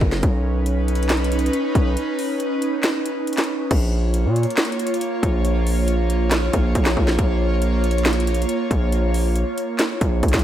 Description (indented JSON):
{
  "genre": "hip hop, trap",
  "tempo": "138 BPM",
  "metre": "4/4",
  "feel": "half-time",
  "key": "Bb phrygian",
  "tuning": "A4 = 440 Hz",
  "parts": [
    { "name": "airy breathy pad", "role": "sustained chords", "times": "0.0-10.4 s", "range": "Gb3 to Db5", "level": "-23 LUFS", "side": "right 1 dB", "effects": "chorus" },
    { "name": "distorted 808-style bass", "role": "bass", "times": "0.0-10.4 s", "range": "Gb1 to Bb2", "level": "-20 LUFS", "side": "equal", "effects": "distortion" },
    { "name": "trap drum kit", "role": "drums", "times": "0.0-10.4 s", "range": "crash cymbal, handclaps, hi-hat, kick drum, snare drum", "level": "-22 LUFS", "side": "equal", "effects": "none" }
  ],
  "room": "little or no reverb",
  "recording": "none",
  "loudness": "-18 LUFS",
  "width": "side -11 dB against mid",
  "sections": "0.0-3.7 A section; 3.7-10.4 B section",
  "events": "break 2.0-3.7",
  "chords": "0.2 Badd9; 3.7 Bbm"
}